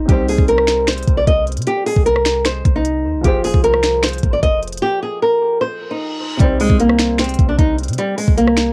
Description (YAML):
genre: hip hop, trap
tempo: 152 BPM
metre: 4/4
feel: half-time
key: C minor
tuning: A4 = 440 Hz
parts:
  - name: flamenco guitar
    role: melody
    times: 0.0-8.7 s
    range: G3 to Eb5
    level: -19 LUFS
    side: equal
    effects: cassette tape
  - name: dark baby grand piano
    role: accompaniment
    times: 0.0-8.7 s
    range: C3 to C5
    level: -28 LUFS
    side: equal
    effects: cassette tape
  - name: clean 808-style bass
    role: bass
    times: 0.0-8.7 s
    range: F1 to C3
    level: -23 LUFS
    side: equal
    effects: none
  - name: trap drum kit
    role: drums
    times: 0.1-8.7 s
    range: finger snaps, hi-hat, kick drum, rim click, snare drum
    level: -19 LUFS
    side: equal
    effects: cassette tape
  - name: reverse cymbal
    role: sound effects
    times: 5.8-6.4 s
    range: none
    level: -31 LUFS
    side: equal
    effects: none
room: little or no reverb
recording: home recording on cassette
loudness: -16 LUFS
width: mono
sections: 0.0-6.4 A section; 6.4-8.7 B section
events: break 4.8-6.4; reverse cymbal 5.8-6.4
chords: 0.1 Cm; 3.2 Fm; 6.4 Cm